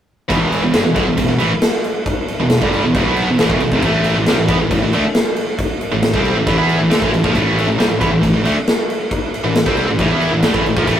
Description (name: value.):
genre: heavy metal.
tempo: 136 BPM.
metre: 4/4.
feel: straight.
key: E phrygian.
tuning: A4 = 440 Hz.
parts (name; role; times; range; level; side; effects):
high-gain distorted guitar; riff; 0.3-11.0 s; E2 to E4; -18 LUFS; right 4 dB; distortion.
tight distorted guitar; riff; 0.3-11.0 s; E2 to E4; -22 LUFS; left 6 dB; distortion.
fuzz picked electric bass; bass; 0.3-11.0 s; E1 to E2; -20 LUFS; left 1 dB; overdrive.
big rock drum kit; drums; 0.3-11.0 s; crash cymbal, kick drum, snare drum; -17 LUFS; equal; none.
room: moderate stone room reverb, RT60 1.0 s.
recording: rough rehearsal-room recording, tube saturation.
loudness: -13 LUFS.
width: side -10 dB against mid.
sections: 0.3-11.0 A section.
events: none.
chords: 0.3 Em; 3.8 A5.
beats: | 0.30 0.74 1.18 1.62 | 2.06 2.50 2.94 3.38 | 3.83 4.27 4.71 5.15 | 5.59 6.03 6.47 6.91 | 7.35 7.79 8.23 8.67 | 9.11 9.55 9.99 10.43 | 10.88.